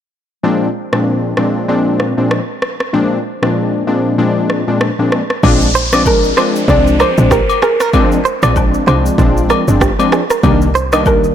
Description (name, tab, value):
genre	afrobeats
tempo	96 BPM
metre	4/4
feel	swing 58% on 16ths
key	unclear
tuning	A4 = 440 Hz
part	warm analog keys	accompaniment	0.4-11.3 s	Bb2 to D4	-14 LUFS	left 2 dB	chorus
part	deep house drum kit	drums	0.9-11.3 s	kick drum, rim click, shaker	-17 LUFS	equal	soft clipping on snare
part	woody log drum bass	bass	5.4-11.3 s	G1 to C2	-15 LUFS	right 1 dB	none
part	agogo bells and woodblock	percussion	5.4-11.2 s	none	-21 LUFS	left 10 dB	none
part	downlifter	sound effects	5.4-10.4 s	none	-23 LUFS	equal	none
part	direct-recorded clean electric guitar	riff	5.8-11.0 s	G4 to Eb5	-18 LUFS	right 6 dB	digital delay
part	soft round pluck	melody	6.1-11.3 s	Bb4 to D5	-15 LUFS	right 1 dB	chorus
room	light reverb, digital ambience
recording	blown-out, overdriven recording, overdrive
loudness	-11 LUFS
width	side -9 dB against mid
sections	0.4-5.4 A section; 5.4-11.3 B section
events	none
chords	0.4 Bb7; 10.4 Cm9